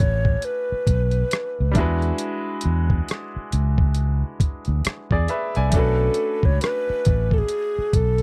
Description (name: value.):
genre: R&B, neo-soul.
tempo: 68 BPM.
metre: 4/4.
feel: swing 61% on 16ths.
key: B dorian.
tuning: A4 = 441 Hz.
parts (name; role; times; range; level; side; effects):
breathy mellow alto recorder; melody; 0.0-8.2 s; G#4 to C#5; -26 LUFS; equal; none.
bright grand piano; accompaniment; 0.0-8.2 s; G3 to G#5; -32 LUFS; equal; none.
fingered electric bass; bass; 0.0-8.2 s; A1 to E2; -24 LUFS; equal; none.
boom bap sampler-style drum kit; drums; 0.0-8.2 s; hi-hat, kick drum, rim click; -24 LUFS; equal; none.
room: little or no reverb.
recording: dry, close 1970s-style studio recording.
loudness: -22 LUFS.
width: mono.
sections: 0.0-8.2 A section.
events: none.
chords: 0.0 Bm9; 1.8 E9; 5.7 Bm9.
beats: 0.43 1.31 | 2.20 3.08 3.96 4.84 | 5.73 6.61 7.49.